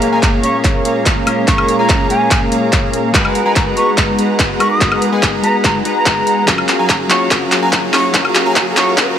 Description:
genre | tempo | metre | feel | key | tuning
future bass | 144 BPM | 4/4 | half-time | unclear | A4 = 436 Hz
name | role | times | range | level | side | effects
clean electric guitar | accompaniment | 0.0-9.2 s | A#2 to A#5 | -21 LUFS | left 2 dB | spring reverb, sidechain pumping
airy breathy pad | sustained chords | 0.0-9.2 s | F#3 to A#5 | -24 LUFS | right 3 dB | chorus, phaser, sidechain pumping
big bright polysynth | riff | 0.0-9.2 s | F#3 to A#5 | -17 LUFS | left 1 dB | sidechain pumping
big-room dance drum kit | drums | 0.0-9.1 s | handclaps, hi-hat, woodblock | -16 LUFS | equal | small room ambience
concert flute | melody | 0.1-8.9 s | G#5 to D#6 | -19 LUFS | right 1 dB | sidechain pumping, tape echo
electronic kick drum | drums | 0.2-9.1 s | none | -18 LUFS | equal | small room ambience
riser | sound effects | 7.4-9.2 s | none | -26 LUFS | right 1 dB | none
room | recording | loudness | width
light reverb | high-pass filter | -11 LUFS | side -9 dB against mid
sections
0.0-9.2 A section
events
build-up 0.0-9.2; drum fill 0.0-9.2; filter sweep 0.0-9.2; riser 7.4-9.2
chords
0.0 A#m7; 3.1 G#m9; 6.5 F#maj7

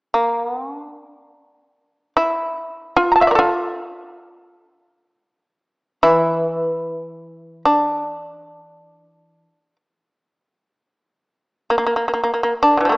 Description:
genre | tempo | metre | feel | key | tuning
japanese traditional, Japanese chamber music | free time | none | none | unclear | A4 = 440 Hz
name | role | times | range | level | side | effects
shamisen | melody | 0.1-13.0 s | D3 to Bb5 | -16 LUFS | equal | none
koto | accompaniment | 6.0-9.4 s | E3 | -20 LUFS | equal | none
room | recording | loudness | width
moderate concert hall reverb, RT60 1.8 s | small speaker sound | -16 LUFS | side -39 dB against mid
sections
0.0-13.0 A section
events
none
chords
none

